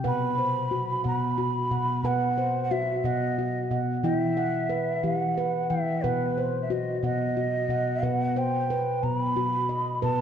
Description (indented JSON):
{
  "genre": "world meditative, meditative tuned percussion",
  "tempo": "60 BPM (dotted quarters)",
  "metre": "6/8",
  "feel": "straight",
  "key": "unclear",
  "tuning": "A4 = 440 Hz",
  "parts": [
    { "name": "handpan", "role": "arpeggios", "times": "0.0-10.2 s", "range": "B2 to G5", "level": "-26 LUFS", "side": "equal", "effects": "tape echo" },
    { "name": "breathy mellow bansuri", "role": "melody", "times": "0.1-10.2 s", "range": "B4 to B5", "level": "-28 LUFS", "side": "right 2 dB", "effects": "tape echo" }
  ],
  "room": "wet recital hall reverb, RT60 1.6 s",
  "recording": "dark, warm production",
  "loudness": "-24 LUFS",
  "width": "side -8 dB against mid",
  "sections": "0.0-8.0 A section; 8.0-10.2 B section",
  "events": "none",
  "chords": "0.0 B5; 4.0 Em; 6.0 B"
}